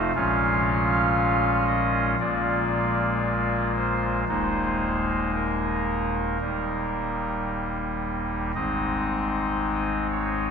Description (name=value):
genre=classical, chorale-style piece for pipe organ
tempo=57 BPM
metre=4/4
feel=rubato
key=unclear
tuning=A4 = 440 Hz
part: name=pipe organ, soft reed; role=solo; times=0.0-10.5 s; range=Eb1 to F5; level=-22 LUFS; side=equal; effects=none
room=wet cathedral reverb, RT60 7.2 s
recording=minimal, uncompressed stereo recording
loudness=-22 LUFS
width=side -6 dB against mid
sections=0.0-10.5 A section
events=none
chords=0.2 Bbm7; 2.2 Bb7; 4.3 Ebsus4; 6.4 Eb; 8.6 Ab